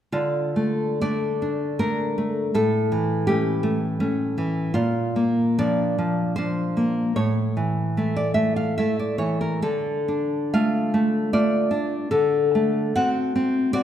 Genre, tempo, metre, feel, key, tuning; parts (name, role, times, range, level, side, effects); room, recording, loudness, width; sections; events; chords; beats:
romantic piece for solo classical guitar; 64-83 BPM; 3/4; rubato; D minor; A4 = 439 Hz
nylon-string guitar; solo; 0.1-13.8 s; A2 to F#5; -20 LUFS; equal
moderate recital hall reverb, RT60 1.8 s; recorded in a church or concert hall; -20 LUFS; side -10 dB against mid
0.1-13.8 A section
0.1 Dm; 2.5 A7; 4.8 Bb; 7.2 A; 9.6 Dm; 12.1 D7
| 0.12 1.01 1.80 | 2.54 3.27 4.00 | 4.76 5.59 6.36 | 7.16 7.97 8.78 | 9.63 10.54 11.34 | 12.13 12.98 13.74